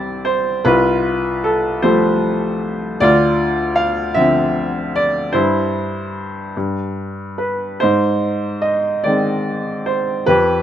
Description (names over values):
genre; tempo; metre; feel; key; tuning
classical, lyrical solo piano; 47-52 BPM (dotted quarters); 6/8; rubato; unclear; A4 = 435 Hz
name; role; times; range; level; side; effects
bright upright piano; solo; 0.0-10.6 s; C2 to F5; -15 LUFS; equal; none
room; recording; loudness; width
light reverb; close, detailed microphones; -15 LUFS; side -10 dB against mid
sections
0.0-10.6 A section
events
none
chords
0.0 C; 0.6 Fadd9/C; 3.0 Dm7; 5.3 C/G; 6.5 N.C.; 7.8 Ab